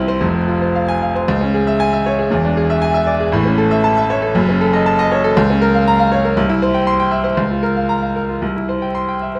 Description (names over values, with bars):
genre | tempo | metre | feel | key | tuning
classical, virtuoso piano study | 117 BPM | 2/4 | rubato | C# minor | A4 = 437 Hz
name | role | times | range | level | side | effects
bright grand piano | solo | 0.0-9.4 s | E1 to C6 | -16 LUFS | equal | none
room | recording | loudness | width
wet recital hall reverb, RT60 1.2 s | vinyl crackle | -16 LUFS | mono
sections
0.0-1.3 A section; 1.3-9.4 B section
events
none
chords
0.2 Fm; 1.3 C#m; 2.3 E7; 3.3 A; 4.4 D#m7b5/F#; 5.4 Bbm/Db; 6.4 C; 7.4 Bbm/Db; 8.4 C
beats
| 0.22 0.75 | 1.28 1.80 | 2.31 2.82 | 3.33 3.84 | 4.35 4.86 | 5.36 5.86 | 6.36 6.86 | 7.37 7.88 | 8.41 8.94